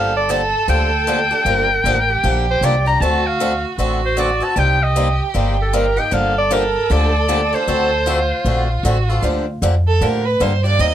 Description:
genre	acoustic string swing (jazz manouche)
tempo	154 BPM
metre	4/4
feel	swing 62% on 8ths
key	G minor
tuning	A4 = 439 Hz
part	bright clarinet	melody	0.0-8.9 s	A4 to Bb5	-18 LUFS	left 1 dB	none
part	warm violin	second line	0.0-10.9 s	E#4 to Eb5	-22 LUFS	right 6 dB	none
part	picked swing-style acoustic guitar	accompaniment	0.0-10.9 s	C3 to A4	-21 LUFS	left 2 dB	none
part	upright bass	bass	0.0-10.9 s	G1 to A2	-19 LUFS	equal	none
room	light reverb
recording	close, detailed microphones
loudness	-14 LUFS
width	side -10 dB against mid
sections	0.0-9.2 A section; 9.2-10.9 B section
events	violin solo 9.2-10.9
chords	0.0 Gm9; 3.0 D7#9; 4.6 Cm7; 6.1 Gm9; 7.7 D7#9; 9.2 Gm9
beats	0.29 0.68 1.07 | 1.46 1.85 2.23 2.62 | 3.01 3.40 3.79 4.18 | 4.57 4.96 5.34 5.73 | 6.12 6.51 6.90 7.29 | 7.68 8.07 8.46 8.85 | 9.24 9.63 10.02 10.40 | 10.79

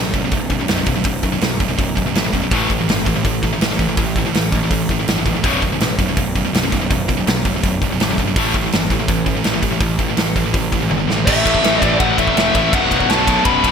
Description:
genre	heavy metal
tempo	164 BPM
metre	4/4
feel	straight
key	unclear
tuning	A4 = 440 Hz
part	distorted electric guitar	riff	0.0-13.7 s	B1 to A3	-22 LUFS	left 10 dB	overdrive
part	scooped high-gain guitar	riff	0.0-13.7 s	B1 to A3	-21 LUFS	right 10 dB	distortion
part	fuzz picked electric bass	bass	0.0-13.7 s	B0 to B1	-23 LUFS	equal	overdrive
part	big rock drum kit	drums	0.1-13.7 s	crash cymbal, hi-hat, kick drum, ride cymbal, snare drum, toms	-19 LUFS	equal	none
part	bluesy overdriven lead guitar	melody	11.3-13.7 s	E5 to B5	-18 LUFS	left 1 dB	distortion
part	biting overdriven guitar	riff	11.3-13.7 s	B1 to A3	-24 LUFS	equal	none
room	moderate lush hall reverb, RT60 2.0 s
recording	bright 1980s-style digital production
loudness	-14 LUFS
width	side -7 dB against mid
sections	0.0-11.3 A section; 11.3-13.7 B section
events	drum fill 10.9-11.3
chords	0.0 B5; 2.5 A5; 5.4 B5; 8.4 A5; 12.7 B5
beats	0.33 0.69 | 1.06 1.42 1.79 2.15 | 2.52 2.88 3.25 3.62 | 3.98 4.34 4.71 5.08 | 5.44 5.80 6.17 6.54 | 6.90 7.26 7.63 8.00 | 8.36 8.72 9.09 9.45 | 9.82 10.18 10.55 10.91 | 11.28 11.64 12.01 12.37 | 12.73 13.10 13.46

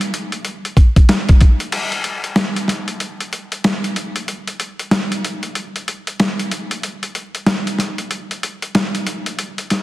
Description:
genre	hip hop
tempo	94 BPM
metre	4/4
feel	swing 62% on 16ths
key	none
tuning	none
part	boom bap sampler-style drum kit	drums	0.0-9.8 s	crash cymbal, hi-hat, kick drum, snare drum	-16 LUFS	equal	none
room	wet echo chamber reverb, RT60 2.2 s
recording	dense, heavily limited modern master, vinyl crackle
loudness	-16 LUFS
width	side -17 dB against mid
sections	0.0-1.7 A section; 1.7-9.8 A section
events	break 1.7-9.8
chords	none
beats	0.45 1.09 | 1.73 2.36 3.00 3.64 | 4.28 4.92 5.55 6.19 | 6.83 7.47 8.11 8.75 | 9.38

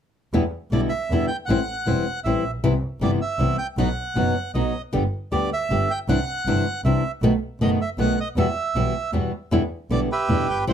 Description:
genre	tango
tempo	157 BPM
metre	3/4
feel	rubato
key	E minor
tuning	A4 = 440 Hz
part	flamenco guitar	accompaniment	0.3-10.7 s	B2 to G4	-22 LUFS	left 1 dB	none
part	clear double bass	bass	0.3-10.7 s	E1 to E2	-25 LUFS	right 1 dB	none
part	bandoneon	melody	0.7-10.7 s	G4 to G5	-26 LUFS	right 3 dB	plate reverb
room	light reverb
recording	none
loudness	-20 LUFS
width	side -8 dB against mid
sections	0.3-9.5 A section; 9.5-10.7 A section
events	none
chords	0.3 Em7; 1.5 Am7; 2.6 Cmaj7; 3.8 B; 4.9 G; 6.1 Cadd9; 7.2 B7; 8.4 Emadd9; 9.5 Em7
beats	| 0.34 0.72 1.11 | 1.49 1.87 2.26 | 2.64 3.02 3.40 | 3.78 4.17 4.55 | 4.94 5.33 5.71 | 6.09 6.47 6.85 | 7.23 7.61 7.99 | 8.37 8.76 9.14 | 9.53 9.91 10.30 | 10.68

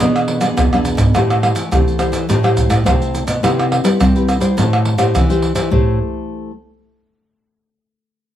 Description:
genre	samba and choro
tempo	105 BPM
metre	4/4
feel	straight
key	A minor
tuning	A4 = 438 Hz
part	bright clarinet	melody	0.0-0.5 s	G#4	-27 LUFS	left 3 dB	none
part	nylon-string guitar	accompaniment	0.0-6.5 s	B2 to C5	-18 LUFS	left 2 dB	none
part	nylon-string guitar	bass	0.0-6.0 s	E2 to C4	-18 LUFS	equal	none
part	tube shaker, surdo, pandeiro and tamborim	percussion	0.0-5.9 s	none	-17 LUFS	right 1 dB	none
room	light reverb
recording	none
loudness	-13 LUFS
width	side -11 dB against mid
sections	0.0-1.1 A section; 1.1-5.7 B section; 5.7-8.0 C section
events	drum fill 0.7-1.1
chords	0.0 E7; 1.1 Am7; 3.4 Cmaj7; 4.6 Am7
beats	0.01 0.58 | 1.15 1.72 2.29 2.86 | 3.43 4.00 4.57 5.14 | 5.71 6.29

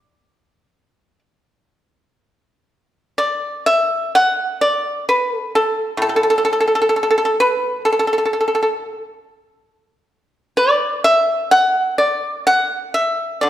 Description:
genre	chinese traditional, Chinese solo plucked strings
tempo	64 BPM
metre	4/4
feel	uneven beats, rubato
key	D gong mode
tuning	A4 = 440 Hz
part	pipa	solo	0.0-13.5 s	A2 to F#5	-15 LUFS	equal	none
room	wet recital hall reverb, RT60 1.5 s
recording	recorded in a church or concert hall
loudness	-15 LUFS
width	side -12 dB against mid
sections	0.0-2.2 A section; 2.2-13.5 B section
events	none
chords	none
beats	0.23 1.23 | 2.23 3.19 4.14 5.07 | 6.00 6.92 7.83 8.73 | 9.65 10.58 11.51 12.47 | 13.43

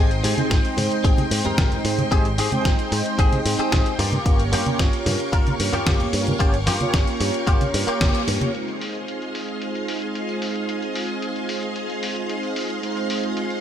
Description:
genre	nu-disco, nu disco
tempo	112 BPM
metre	4/4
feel	straight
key	F minor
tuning	A4 = 445 Hz
part	mellow synth brass	accompaniment	0.0-13.6 s	Ab3 to G5	-26 LUFS	right 2 dB	chorus, cassette tape, sidechain pumping, dub echo
part	string machine, full ensemble	sustained chords	0.0-13.6 s	Ab3 to Db6	-30 LUFS	equal	ensemble chorus, sidechain pumping
part	direct-recorded clean electric guitar	riff	0.0-8.2 s	Bb3 to Bb4	-27 LUFS	left 2 dB	ensemble chorus, dub echo
part	picked electric bass with an envelope filter	bass	0.0-8.4 s	G1 to Ab2	-25 LUFS	equal	sidechain pumping
part	dusty soul sampler-style drum kit	drums	0.1-13.6 s	hi-hat, snare drum	-28 LUFS	left 1 dB	low-pass filter on hats, studio ambience, low-pass filter on snare
part	congas	percussion	0.4-8.5 s	none	-28 LUFS	right 2 dB	none
part	electronic kick drum	drums	0.5-8.1 s	none	-20 LUFS	equal	studio ambience
room	light reverb, digital ambience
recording	none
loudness	-19 LUFS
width	side -10 dB against mid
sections	0.0-8.5 A section; 8.5-13.6 B section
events	band accent 8.0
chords	0.0 Abmaj7; 4.0 Gm7b5; 8.5 Fm7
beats	0.51 1.05 1.58 | 2.12 2.65 3.19 3.72 | 4.26 4.80 5.33 5.87 | 6.40 6.94 7.47 8.01 | 8.55 9.08 9.62 10.15 | 10.69 11.22 11.76 12.30 | 12.83 13.37

